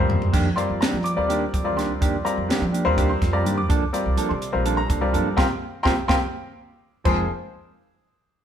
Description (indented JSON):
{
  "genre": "electric jazz fusion",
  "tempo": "250 BPM (eighths)",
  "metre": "7/8",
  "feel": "straight",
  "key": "unclear",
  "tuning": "A4 = 440 Hz",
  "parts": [
    { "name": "clear concert grand piano", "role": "accompaniment", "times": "0.0-7.3 s", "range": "F3 to D6", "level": "-24 LUFS", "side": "left 2 dB", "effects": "none" },
    { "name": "upright bass", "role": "bass", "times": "0.0-7.3 s", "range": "F1 to F3", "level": "-26 LUFS", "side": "right 1 dB", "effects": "none" },
    { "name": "crisp fusion drum kit", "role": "drums", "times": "0.1-7.2 s", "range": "crash cymbal, hi-hat, kick drum, snare drum, splash cymbal, toms", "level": "-24 LUFS", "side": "equal", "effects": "none" },
    { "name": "mellow electric guitar", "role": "stabs", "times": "0.3-7.3 s", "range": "Eb3 to A4", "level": "-27 LUFS", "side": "right 4 dB", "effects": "none" }
  ],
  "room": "moderate stone room reverb, RT60 1.1 s",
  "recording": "band playing live in one room",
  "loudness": "-20 LUFS",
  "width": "side -9 dB against mid",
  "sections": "0.0-7.1 A section; 7.1-8.4 B section",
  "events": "drum fill 0.0-0.3; band accent 5.4-7.1",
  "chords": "0.3 F13sus4; 3.7 C13sus4; 7.1 Fm",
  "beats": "0.10 | 0.33 0.57 0.81 1.05 1.29 1.53 1.77 | 2.01 2.25 2.49 2.73 2.97 3.21 3.45 | 3.69 3.93 4.17 4.41 4.65 4.89 5.13 | 5.37 5.61 5.85 6.09 6.33 6.58 6.82 | 7.06"
}